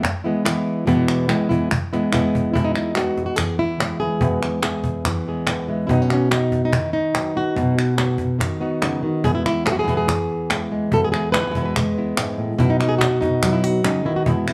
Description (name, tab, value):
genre	flamenco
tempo	143 BPM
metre	4/4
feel	straight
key	E major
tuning	A4 = 444 Hz
part	flamenco guitar	melody	0.0-14.5 s	E2 to B4	-22 LUFS	equal	none
part	cajon	percussion	0.0-14.5 s	none	-26 LUFS	equal	none
part	palmas hand claps	percussion	0.0-14.5 s	none	-28 LUFS	equal	none
part	flamenco guitar	stabs	2.5-14.5 s	E2 to F#4	-29 LUFS	equal	none
room	moderate studio reverb, RT60 0.8 s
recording	small room ambience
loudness	-20 LUFS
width	mono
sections	0.0-2.6 A section; 2.6-14.5 B section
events	drum fill 1.9-2.6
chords	0.0 E; 5.9 B; 9.2 E; 12.6 B